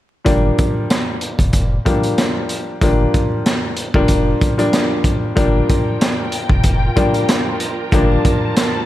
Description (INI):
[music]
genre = hip hop, boom-bap hip-hop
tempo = 94 BPM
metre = 4/4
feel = swing 55% on 16ths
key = G minor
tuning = A4 = 440 Hz
[part]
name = dark grand piano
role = accompaniment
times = 0.2-8.9 s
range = F3 to D4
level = -19 LUFS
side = left 2 dB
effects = high-pass filter, low-pass filter
[part]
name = sub bass with octave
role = bass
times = 0.3-8.2 s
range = F1 to G1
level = -18 LUFS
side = equal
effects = none
[part]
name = crunchy breakbeat drum kit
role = drums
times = 0.3-8.7 s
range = hi-hat, kick drum, snare drum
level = -17 LUFS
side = equal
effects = gated reverb
[part]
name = dark studio string section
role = sustained chords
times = 5.4-8.9 s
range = F4 to A5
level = -24 LUFS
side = right 1 dB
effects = high-pass filter, low-pass filter
[sound]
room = light reverb, small room ambience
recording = bright 1980s-style digital production, vinyl crackle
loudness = -14 LUFS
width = side -14 dB against mid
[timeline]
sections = 0.3-5.4 A section; 5.4-8.9 B section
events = none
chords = 0.3 Gm7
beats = | 0.26 0.90 1.54 2.18 | 2.81 3.45 4.09 4.73 | 5.37 6.01 6.64 7.28 | 7.92 8.56